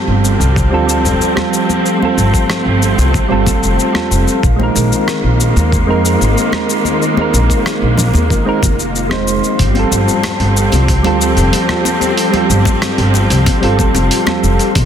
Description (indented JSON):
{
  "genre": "sunset chillout",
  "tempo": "93 BPM",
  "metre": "4/4",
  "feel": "straight",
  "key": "G minor",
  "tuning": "A4 = 443 Hz",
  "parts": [
    { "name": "soft electric-piano-like synth keys", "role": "accompaniment", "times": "0.0-14.7 s", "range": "G3 to C5", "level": "-16 LUFS", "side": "right 1 dB", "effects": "chorus, auto-pan, ping-pong delay" },
    { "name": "warm chamber string section", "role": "sustained chords", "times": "0.0-14.9 s", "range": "Eb3 to C4", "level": "-18 LUFS", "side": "right 2 dB", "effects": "none" },
    { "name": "wind-like tuned noise texture", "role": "texture", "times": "0.0-14.9 s", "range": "F4 to F5", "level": "-24 LUFS", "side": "equal", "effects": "built-in reverb" },
    { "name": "upright bass", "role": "bass", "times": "0.1-14.9 s", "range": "F1 to F2", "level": "-14 LUFS", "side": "equal", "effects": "none" },
    { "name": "dusty soul sampler-style drum kit", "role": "drums", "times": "0.2-14.9 s", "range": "hi-hat, rim click, shaker", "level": "-21 LUFS", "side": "left 2 dB", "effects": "overdrive" },
    { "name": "electronic kick drum", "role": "drums", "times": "0.6-14.9 s", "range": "none", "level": "-16 LUFS", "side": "equal", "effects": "overdrive" },
    { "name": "congas", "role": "percussion", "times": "1.4-14.9 s", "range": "none", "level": "-24 LUFS", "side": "left 4 dB", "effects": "none" }
  ],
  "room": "moderate plate reverb, RT60 2.5 s",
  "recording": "dense, heavily limited modern master",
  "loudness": "-11 LUFS",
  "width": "side -8 dB against mid",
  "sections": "0.0-14.9 A section",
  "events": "none",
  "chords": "0.0 G9sus4; 4.4 Bb9sus4; 9.6 G9sus4"
}